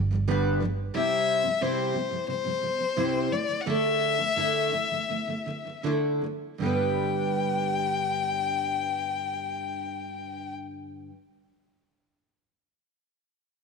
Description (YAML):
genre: acoustic pop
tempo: 76-90 BPM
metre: 4/4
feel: straight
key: G major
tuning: A4 = 441 Hz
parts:
  - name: picked steel-string acoustic guitar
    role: accompaniment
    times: 0.0-11.2 s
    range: G2 to C5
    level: -29 LUFS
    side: right 2 dB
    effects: double-tracked left and right
  - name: vintage muted fingered electric bass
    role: bass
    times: 0.0-0.9 s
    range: G1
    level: -26 LUFS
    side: right 2 dB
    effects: none
  - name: rich violin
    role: melody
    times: 1.0-10.5 s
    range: C5 to G5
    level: -27 LUFS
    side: left 6 dB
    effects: none
room: moderate echo chamber reverb, RT60 1.8 s, studio ambience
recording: none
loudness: -25 LUFS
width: side -4 dB against mid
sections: 0.0-6.6 A section; 6.6-9.8 B section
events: slowing down 0.9-6.6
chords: 0.0 G; 0.9 C; 3.3 Dsus2; 6.6 G